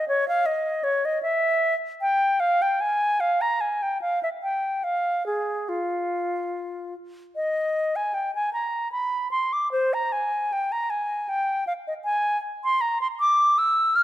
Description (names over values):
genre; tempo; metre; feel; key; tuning
classical, baroque-style fantasia for unaccompanied flute; 70-79 BPM; 3/4; rubato; F minor; A4 = 441 Hz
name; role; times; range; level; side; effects
concert flute; solo; 0.0-14.0 s; F4 to F6; -22 LUFS; equal; none
room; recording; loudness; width
moderate scoring stage reverb, RT60 1.6 s; none; -22 LUFS; side -13 dB against mid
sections
0.0-7.4 A section; 7.4-14.0 A section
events
none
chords
none